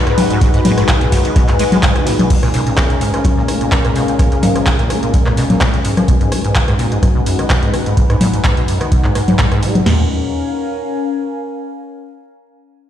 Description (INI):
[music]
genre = acid house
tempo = 127 BPM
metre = 4/4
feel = swing 54% on 16ths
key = Bb phrygian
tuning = A4 = 440 Hz
[part]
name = warm analog pad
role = sustained chords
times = 0.0-10.1 s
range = Ab3 to Cb5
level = -23 LUFS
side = left 1 dB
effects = chorus, sidechain pumping
[part]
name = acid bass, saw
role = riff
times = 0.0-10.1 s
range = Gb2 to Bb3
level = -18 LUFS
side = equal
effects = overdrive, ensemble chorus
[part]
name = warbly tape-like pad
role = texture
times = 0.0-11.7 s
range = Db4 to Ab5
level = -21 LUFS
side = left 2 dB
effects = chorus, built-in reverb, sidechain pumping
[part]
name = electro analog drum machine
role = drums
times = 0.1-9.8 s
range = congas, crash cymbal, handclaps, hi-hat, ride cymbal, rim click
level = -18 LUFS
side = left 1 dB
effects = none
[part]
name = booming analog drum machine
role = drums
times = 0.4-10.0 s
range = crash cymbal, kick drum, snare drum, toms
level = -15 LUFS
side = equal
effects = none
[part]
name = crunchy breakbeat drum kit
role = drums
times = 0.4-6.0 s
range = hi-hat, snare drum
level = -31 LUFS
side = equal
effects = none
[sound]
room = moderate lush hall reverb, RT60 1.8 s, digital ambience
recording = played on a big sound system in a bare room, large studio reverb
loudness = -12 LUFS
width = side -10 dB against mid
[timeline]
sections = 0.0-2.3 A section; 2.3-9.9 B section; 9.9-11.8 C section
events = drop 0.0-2.3; filter sweep on analog synth pad 2.3-9.9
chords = 0.0 Abm7; 2.3 Bbm7; 6.1 Abm7; 9.9 Bbm7